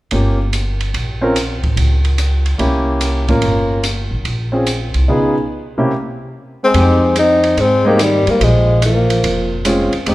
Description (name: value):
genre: jazz, small-group swing and bop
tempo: 145 BPM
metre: 4/4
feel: swing 67% on 8ths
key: unclear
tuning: A4 = 438 Hz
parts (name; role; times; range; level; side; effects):
- warm concert grand piano; accompaniment; 0.1-10.1 s; C3 to Bb4; -17 LUFS; equal; none
- upright bass; bass; 0.1-10.1 s; F1 to Ab2; -16 LUFS; equal; none
- open jazz drum kit; drums; 0.1-10.1 s; hi-hat, kick drum, ride cymbal; -23 LUFS; right 2 dB; none
- breathy tenor saxophone; melody; 6.6-9.6 s; G3 to Eb4; -14 LUFS; left 2 dB; none
- breathy trombone; second line; 6.6-9.6 s; Eb3 to C4; -20 LUFS; right 2 dB; none
room: moderate recital hall reverb, RT60 1.8 s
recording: recorded in a church or concert hall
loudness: -13 LUFS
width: side -17 dB against mid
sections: 0.1-6.7 A section; 6.7-10.1 B section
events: none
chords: 0.1 Gm7b5; 0.9 Bbm; 1.8 N.C.; 2.6 C7b9; 3.4 Gm7b5; 4.3 Bbm7; 5.1 Db9; 5.9 N.C.; 6.7 Fm9; 8.4 Bbm9